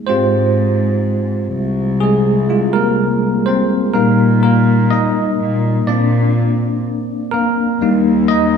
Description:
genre	pop ballad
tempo	62 BPM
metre	4/4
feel	straight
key	Eb major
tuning	A4 = 441 Hz
part	bell-like tine electric piano	accompaniment	0.0-8.6 s	G3 to Eb5	-14 LUFS	equal	medium stereo tremolo
part	dark chamber cello section	bass	0.1-8.6 s	C2 to Bb2	-17 LUFS	equal	none
room	moderate lush hall reverb, RT60 2.0 s, small room reverb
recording	studio ambience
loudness	-13 LUFS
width	side -7 dB against mid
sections	0.0-7.8 A section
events	tine electric piano solo 0.0-7.8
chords	0.1 Fmadd9; 4.0 Eb/Bb; 5.9 Bbadd9; 7.8 Eb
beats	| 0.08 1.05 2.01 2.98 | 3.95 4.92 5.88 6.85 | 7.82

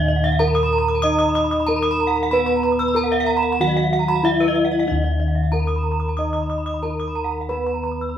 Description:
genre	gamelan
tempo	94 BPM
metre	4/4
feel	straight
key	Eb pelog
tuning	A4 = 436 Hz
part	gamelan-type bronze metallophone	melody	0.0-8.2 s	Eb4 to Eb5	-22 LUFS	left 1 dB	none
part	gamelan-type bronze metallophone	accompaniment	0.0-8.2 s	Eb3 to Eb4	-27 LUFS	equal	none
part	gamelan-type bronze metallophone	arpeggios	0.0-8.2 s	Eb5 to Eb6	-26 LUFS	right 7 dB	none
part	gamelan-type bossed gongs	bass	0.0-8.2 s	Eb2 to Cb5	-24 LUFS	left 1 dB	none
part	gamelan-type bronze metallophone	arpeggios	0.1-8.1 s	Cb5 to Fb6+35c	-24 LUFS	equal	none
room	wet studio reverb, RT60 0.9 s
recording	band playing live in one room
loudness	-17 LUFS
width	side -9 dB against mid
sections	0.0-8.2 A section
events	none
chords	none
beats	0.41 1.04 1.68 | 2.32 2.96 3.60 4.23 | 4.87 5.51 6.16 6.82 | 7.49 8.17

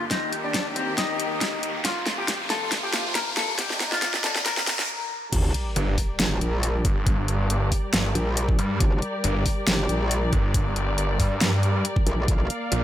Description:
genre	heavy wobble dubstep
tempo	138 BPM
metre	4/4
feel	swing 54% on 16ths, half-time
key	G minor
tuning	A4 = 440 Hz
part	electric guitar with an envelope filter	melody	0.0-5.2 s	C4 to Bb4	-29 LUFS	left 3 dB	spring reverb, dub echo
part	muted studio string section	sustained chords	0.0-12.8 s	C2 to F5	-31 LUFS	left 1 dB	sidechain pumping, low-pass filter
part	riser and sub drop	sound effects	0.0-7.1 s	none	-30 LUFS	equal	none
part	dubstep drum kit	drums	0.1-12.8 s	crash cymbal, hi-hat, snare drum	-26 LUFS	equal	overdrive
part	electronic kick drum	drums	0.1-12.4 s	none	-24 LUFS	equal	overdrive
part	metallic wobble bass	bass	5.3-12.5 s	G1 to Bb1	-24 LUFS	equal	chorus, overdrive
part	snarling distorted saw bass	bass	5.8-12.8 s	G1 to G2	-24 LUFS	equal	distortion, overdrive
room	light reverb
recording	high-pass filter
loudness	-22 LUFS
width	side -12 dB against mid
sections	0.0-5.3 A section; 5.3-12.8 B section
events	build-up 0.0-5.3; drum fill 0.0-4.9; riser 0.0-4.9; filter sweep on clean electric guitar 0.0-5.3; filter sweep 0.0-5.3; break 4.9-5.3; drop 5.3-12.8; impact 5.3-7.1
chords	0.1 Eb; 1.8 Fsus4; 3.6 Cmadd9; 5.3 Gm; 12.3 Bb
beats	| 0.11 0.54 0.98 1.41 | 1.85 2.28 2.72 3.15 | 3.59 4.02 4.46 4.89 | 5.33 5.76 6.20 6.63 | 7.07 7.50 7.93 8.37 | 8.80 9.24 9.67 10.11 | 10.54 10.98 11.41 11.85 | 12.28 12.72

